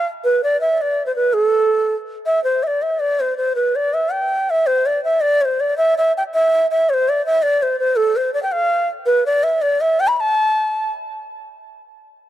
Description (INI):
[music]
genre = celtic folk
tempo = 109 BPM (dotted quarters)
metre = 6/8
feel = straight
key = unclear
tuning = A4 = 435 Hz
[part]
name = bass bansuri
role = solo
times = 0.0-10.9 s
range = A4 to B5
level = -16 LUFS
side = equal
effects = tape echo
[sound]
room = little or no reverb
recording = dry, close 1970s-style studio recording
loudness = -15 LUFS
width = side -12 dB against mid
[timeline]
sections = 0.0-2.4 A section; 2.4-11.3 A section; 11.3-12.3 B section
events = none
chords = none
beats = | 0.23 0.78 | 1.33 1.88 | 2.43 2.99 | 3.54 4.09 | 4.64 5.19 | 5.75 6.30 | 6.85 7.40 | 7.96 8.51 | 9.06 9.61 | 10.17 10.72